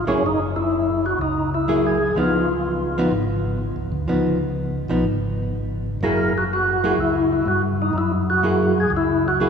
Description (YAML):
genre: jazz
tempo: 124 BPM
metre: 4/4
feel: swing 68% on 8ths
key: unclear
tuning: A4 = 441 Hz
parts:
  - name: percussive tonewheel organ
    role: melody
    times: 0.0-3.1, 6.0-9.5 s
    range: Db4 to Bb4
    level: -21 LUFS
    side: left 1 dB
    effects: slow rotary speaker, overdrive, chorus vibrato
  - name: archtop guitar, miked and amplified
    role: accompaniment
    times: 0.1-9.5 s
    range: F3 to Ab4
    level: -23 LUFS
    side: equal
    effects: none
  - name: mellow tonewheel organ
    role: bass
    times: 0.1-9.5 s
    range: Gb1 to G2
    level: -25 LUFS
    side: equal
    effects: slow rotary speaker
room: wet cathedral reverb, RT60 4.1 s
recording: recorded in a church or concert hall, studio ambience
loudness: -18 LUFS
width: side -6 dB against mid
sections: 0.0-9.5 A section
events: none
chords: 0.2 Gb9; 2.2 Db9; 6.0 Gb9